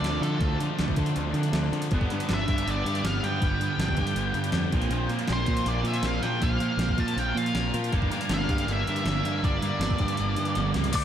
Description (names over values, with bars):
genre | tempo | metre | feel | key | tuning
indie rock | 160 BPM | 4/4 | straight | unclear | A4 = 443 Hz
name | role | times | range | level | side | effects
octave-fuzz lead guitar | melody | 0.0-11.0 s | A4 to A5 | -31 LUFS | equal | distortion, ping-pong delay
fuzz guitar | riff | 0.0-11.0 s | G2 to D4 | -31 LUFS | right 6 dB | distortion, analog chorus, ping-pong delay
overdriven electric guitar | riff | 0.0-11.0 s | F3 to A4 | -34 LUFS | left 10 dB | none
fuzz picked electric bass | bass | 0.0-11.0 s | G1 to D3 | -29 LUFS | equal | overdrive
crisp 8-bit digital drum machine | drums | 0.0-11.0 s | crash cymbal, hi-hat, kick drum, snare drum | -30 LUFS | equal | overdrive
tambourine | percussion | 10.9-11.0 s | none | -39 LUFS | right 7 dB | none
glockenspiel with rubber mallets | second line | 11.0 s | D6 | -28 LUFS | left 8 dB | none
room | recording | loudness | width
light reverb, digital ambience | none | -24 LUFS | side -10 dB against mid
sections
0.0-10.9 A section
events
drum fill 10.6-10.9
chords
0.0 Dm; 1.9 G; 4.7 Bbsus2; 7.9 Gm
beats
0.04 | 0.42 0.79 1.17 1.54 | 1.92 2.30 2.67 3.05 | 3.43 3.80 4.18 4.55 | 4.93 5.31 5.68 6.06 | 6.43 6.81 7.18 7.56 | 7.94 8.31 8.69 9.06 | 9.44 9.82 10.19 10.57 | 10.94